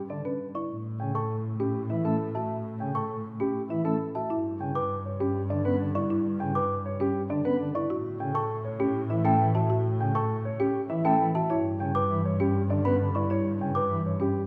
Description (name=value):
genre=classical, minimalist pattern music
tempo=100 BPM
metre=3/4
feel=straight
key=G lydian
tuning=A4 = 440 Hz
part: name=rich studio double bass section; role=bass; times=0.0-14.5 s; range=G2 to A2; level=-34 LUFS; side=equal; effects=none
part: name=dark concert grand piano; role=melody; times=0.1-14.4 s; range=G4 to G5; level=-34 LUFS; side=equal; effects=none
part: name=pipe organ, sparkling flutes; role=accompaniment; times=0.1-14.0 s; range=C#3 to B3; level=-36 LUFS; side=equal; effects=none
part: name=folk marimba with medium mallets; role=arpeggios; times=0.1-14.4 s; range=C#4 to F#4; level=-34 LUFS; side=equal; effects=none
part: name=celesta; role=arpeggios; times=0.6-13.9 s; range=G5 to D6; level=-34 LUFS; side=equal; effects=none
room=moderate scoring stage reverb, RT60 1.5 s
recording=none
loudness=-28 LUFS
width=mono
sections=0.0-14.5 A section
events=none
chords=0.0 G6; 0.7 A7; 4.3 G6; 7.9 A7; 11.5 G6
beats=0.10 | 0.70 1.30 1.90 | 2.50 3.10 3.70 | 4.30 4.90 5.50 | 6.10 6.70 7.30 | 7.90 8.50 9.10 | 9.70 10.30 10.90 | 11.50 12.10 12.70 | 13.30 13.90